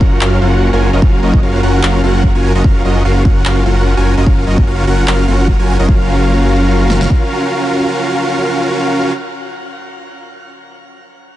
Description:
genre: future bass.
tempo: 148 BPM.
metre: 4/4.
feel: swing 55% on 16ths, half-time.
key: Gb major.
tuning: A4 = 440 Hz.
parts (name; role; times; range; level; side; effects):
dense compressed supersaw; riff; 0.0-9.1 s; Db4 to Ab5; -15 LUFS; equal; sidechain pumping, digital delay.
wide detuned saw bass; bass; 0.0-7.1 s; Gb1; -13 LUFS; equal; chorus, sidechain pumping.
pop drum kit; drums; 0.0-7.2 s; kick drum, snare drum; -12 LUFS; equal; none.
electronic handclaps; drums; 0.2-5.2 s; none; -23 LUFS; equal; none.
room: light reverb.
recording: nothing above 10.4 kHz.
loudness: -10 LUFS.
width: side -14 dB against mid.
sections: 0.0-5.9 A section; 5.9-9.1 B section.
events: filter sweep on detuned saw bass 0.0-5.9.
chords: 0.0 Gbmaj7.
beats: 0.21 0.62 | 1.02 1.43 1.83 2.24 | 2.64 3.05 3.45 3.86 | 4.26 4.67 5.08 5.48 | 5.89 6.29 6.70 7.10 | 7.51 7.91 8.32 8.72.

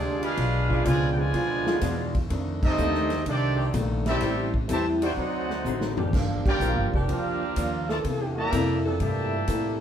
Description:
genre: jazz, big band swing.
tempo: 125 BPM.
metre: 4/4.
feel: swing 68% on 8ths.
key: F major.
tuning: A4 = 440 Hz.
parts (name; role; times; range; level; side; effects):
brilliant trumpet section; melody; 0.0-9.8 s; C4 to Bb5; -30 LUFS; equal; none.
clear trombone section; second line; 0.0-9.8 s; Bb2 to G4; -32 LUFS; right 2 dB; none.
picked acoustic archtop guitar; accompaniment; 0.0-9.8 s; F2 to A4; -30 LUFS; left 1 dB; none.
upright bass; bass; 0.0-9.8 s; F1 to A2; -28 LUFS; equal; none.
swinging big-band drum kit; drums; 0.2-9.6 s; crash cymbal, hi-hat, kick drum, ride cymbal, snare drum, toms; -31 LUFS; equal; none.
warm saxophone section; sustained chords; 0.7-9.5 s; Bb2 to D5; -32 LUFS; right 2 dB; none.
room: wet club reverb, RT60 0.7 s.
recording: heard from further back in the room.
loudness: -23 LUFS.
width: side -9 dB against mid.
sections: 0.0-9.8 A section.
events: band accent 2.5, 6.4; drum fill 5.7-6.1.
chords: 0.4 Bdim7; 2.3 F13; 4.2 Am7; 5.2 D7b9; 6.1 Gm7; 8.0 C13.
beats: | 0.38 0.86 1.34 1.82 | 2.30 2.77 3.25 3.73 | 4.21 4.69 5.17 5.65 | 6.13 6.61 7.09 7.57 | 8.05 8.53 9.01 9.48.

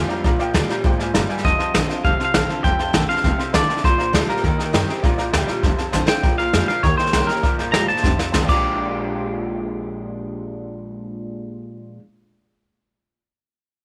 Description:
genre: rockabilly.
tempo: 200 BPM.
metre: 4/4.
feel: straight.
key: Bb mixolydian.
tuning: A4 = 440 Hz.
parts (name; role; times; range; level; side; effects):
twangy electric guitar; melody; 0.0-11.6 s; Bb4 to D6; -24 LUFS; equal; tape echo.
bright upright piano; accompaniment; 0.0-11.6 s; C5 to C6; -32 LUFS; equal; none.
picked steel-string acoustic guitar; accompaniment; 0.0-12.0 s; F2 to G4; -30 LUFS; equal; none.
electric guitar through a small old amp; riff; 0.0-12.0 s; F2 to G4; -29 LUFS; equal; analog chorus.
upright bass; bass; 0.0-11.6 s; F1 to Ab2; -28 LUFS; equal; none.
jazz brush drum kit; drums; 0.1-8.6 s; crash cymbal, hi-hat, kick drum, snare drum; -23 LUFS; equal; none.
room: light reverb, studio reverb.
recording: none.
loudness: -19 LUFS.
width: mono.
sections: 0.0-6.2 A section; 6.2-8.6 B section; 8.6-11.0 C section.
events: drum fill 5.9, 8.0-8.6.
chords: 0.0 Bb7; 1.4 F7; 3.8 Bb7; 4.4 Eb7; 5.0 Bb7; 5.6 F7; 6.2 Bb7; 6.8 Eb7; 7.4 Bb7; 8.0 F7; 8.5 Bb6.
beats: | 0.24 0.54 0.84 1.14 | 1.44 1.74 2.04 2.34 | 2.64 2.94 3.24 3.54 | 3.84 4.14 4.44 4.74 | 5.04 5.34 5.64 5.94 | 6.24 6.54 6.83 7.13 | 7.43 7.73 8.03 8.33 | 8.63 8.94 9.23 9.54 | 9.84 10.14 10.44 10.74.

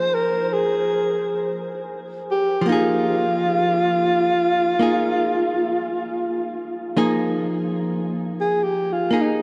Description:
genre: jazz.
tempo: 56 BPM.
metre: 4/4.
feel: swing 66% on 8ths.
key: F minor.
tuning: A4 = 440 Hz.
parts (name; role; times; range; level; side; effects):
mellow alto saxophone; melody; 0.0-9.4 s; Eb4 to C5; -23 LUFS; equal; none.
archtop guitar, miked and amplified; accompaniment; 0.0-9.4 s; F3 to Ab4; -26 LUFS; equal; none.
room: wet huge ambient reverb, RT60 8.7 s.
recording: dreamy mix soaked in reverb, nothing above 10.8 kHz.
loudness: -21 LUFS.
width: mono.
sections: 0.0-6.9 A section; 6.9-9.4 B section.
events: alto saxophone solo 6.9-9.4.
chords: 0.0 Fm7.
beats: 0.49 1.56 | 2.64 3.71 4.79 5.87 | 6.95 8.03 9.10.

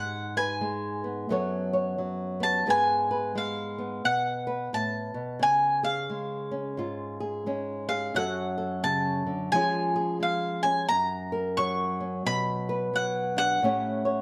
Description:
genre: folk.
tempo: 88 BPM.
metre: 4/4.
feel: swing 62% on 8ths.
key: F# harmonic minor.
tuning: A4 = 440 Hz.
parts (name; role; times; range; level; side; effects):
mandolin; melody; 0.0-14.2 s; E#5 to C#6; -29 LUFS; equal; plate reverb.
nylon-string guitar; accompaniment; 0.0-14.2 s; F#2 to C#5; -32 LUFS; equal; none.
room: moderate studio reverb, RT60 0.6 s.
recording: none.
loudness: -28 LUFS.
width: mono.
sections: 0.0-14.2 A section.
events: none.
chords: 0.0 G#m7; 1.3 F#madd9; 2.7 G#m6; 4.0 B5; 5.4 C#; 8.1 F#m; 9.5 C#/E#; 10.9 F#; 12.3 Bm; 13.6 A7.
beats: 0.63 1.31 1.99 | 2.68 3.36 4.04 4.73 | 5.41 6.09 6.78 7.46 | 8.15 8.83 9.52 10.20 | 10.89 11.57 12.26 12.95 | 13.63.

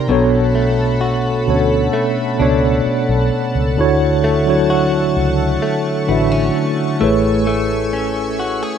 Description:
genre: contemporary R&B.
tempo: 65 BPM.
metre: 4/4.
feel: straight.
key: unclear.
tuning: A4 = 438 Hz.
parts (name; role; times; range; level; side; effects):
mellow tine electric piano; accompaniment; 0.0-8.8 s; B2 to E5; -16 LUFS; right 1 dB; medium stereo tremolo.
chorused pulse-width pad; sustained chords; 0.0-8.8 s; A3 to E6; -24 LUFS; equal; none.
direct-recorded clean electric guitar; arpeggios; 0.0-8.8 s; B2 to G#4; -22 LUFS; left 2 dB; spring reverb.
vintage muted fingered electric bass; bass; 0.1-8.6 s; A1 to D2; -21 LUFS; equal; none.
room: light reverb.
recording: rough home demo mix.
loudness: -14 LUFS.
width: side -8 dB against mid.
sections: 0.0-8.8 A section.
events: none.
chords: 0.1 Bm7; 3.8 Dmaj7; 7.0 Amaj7.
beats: | 0.09 1.01 1.94 2.86 | 3.78 4.70 5.63 6.55 | 7.47 8.40.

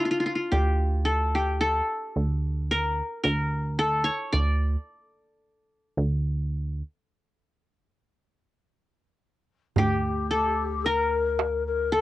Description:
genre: Arabic maqam ensemble.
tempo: 110 BPM (eighths).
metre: 10/8.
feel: straight.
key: D minor.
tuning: A4 = 440 Hz.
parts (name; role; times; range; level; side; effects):
qanun; melody; 0.0-12.0 s; D4 to D5; -26 LUFS; left 1 dB; cassette tape.
plucky analog bass; bass; 0.5-12.0 s; D2; -26 LUFS; right 1 dB; none.
breathy bright low ney; second line; 9.8-12.0 s; G4 to Bb4; -27 LUFS; left 6 dB; none.
darbuka; percussion; 9.8-12.0 s; none; -27 LUFS; right 5 dB; none.
room: light reverb.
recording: home recording on cassette.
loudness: -24 LUFS.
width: side -16 dB against mid.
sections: 0.0-9.8 A section; 9.8-12.0 B section.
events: break 7.0-9.8.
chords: none.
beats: 0.53 1.07 1.61 2.16 2.70 3.24 3.79 | 4.33 4.87 5.42 5.96 6.50 7.04 7.59 8.13 8.67 9.22 | 9.76 10.30 10.84 11.39 11.93.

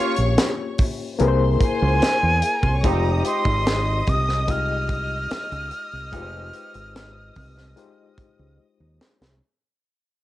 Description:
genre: lush 1970s-style soul.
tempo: 73 BPM.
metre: 4/4.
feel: straight.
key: F minor.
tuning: A4 = 440 Hz.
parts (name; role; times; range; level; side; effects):
breathy bright jazz flute; melody; 0.0-8.6 s; F5 to F6; -25 LUFS; equal; none.
warm studio string section; second line; 0.0-9.0 s; Ab4 to Eb6; -31 LUFS; left 1 dB; none.
barky reed electric piano; accompaniment; 0.0-9.4 s; Ab3 to Eb5; -27 LUFS; left 6 dB; overdrive, fast tremolo.
clear horn section; stabs; 0.0-6.7 s; Bb3 to G4; -28 LUFS; right 10 dB; none.
fingered electric bass; bass; 0.2-9.4 s; F1 to E2; -22 LUFS; right 1 dB; none.
tight funk drum kit; drums; 0.2-9.4 s; hi-hat, kick drum, snare drum; -22 LUFS; equal; none.
room: light reverb.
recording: home recording on cassette.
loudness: -19 LUFS.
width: side -14 dB against mid.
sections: 0.0-9.4 A section.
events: fade-out 0.0-9.4; drum fill 8.6-9.4.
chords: 0.0 Gm7b5; 1.2 C7b13; 2.8 Fm9.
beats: 0.37 1.20 2.02 | 2.84 3.66 4.49 5.31 | 6.13 6.95 7.77 8.59.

